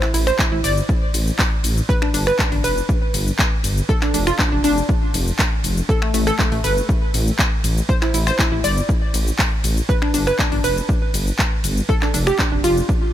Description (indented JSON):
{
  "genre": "progressive house",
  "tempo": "120 BPM",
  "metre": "4/4",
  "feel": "straight",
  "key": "unclear",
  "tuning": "A4 = 440 Hz",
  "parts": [
    { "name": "analog pluck", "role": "arpeggios", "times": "0.0-13.1 s", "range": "A3 to D5", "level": "-22 LUFS", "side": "right 1 dB", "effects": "chorus, vintage 12-bit sampler grit, sidechain pumping, tape echo" },
    { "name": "pop drum kit", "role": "drums", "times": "0.0-13.0 s", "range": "finger snaps, handclaps, hi-hat, ride cymbal, shaker", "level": "-24 LUFS", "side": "left 1 dB", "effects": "none" },
    { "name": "dark detuned saw bass", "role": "bass", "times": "0.1-12.8 s", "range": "F1 to A1", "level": "-21 LUFS", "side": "equal", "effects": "sidechain pumping" },
    { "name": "electronic kick drum", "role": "drums", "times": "0.4-13.0 s", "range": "none", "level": "-20 LUFS", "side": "equal", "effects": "none" }
  ],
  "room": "little or no reverb",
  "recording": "none",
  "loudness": "-16 LUFS",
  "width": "side -12 dB against mid",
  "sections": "0.0-13.1 A section",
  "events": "none",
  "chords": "0.0 A5; 1.9 G; 3.9 Dm/F; 5.9 A5; 9.9 G; 11.9 Dm/F"
}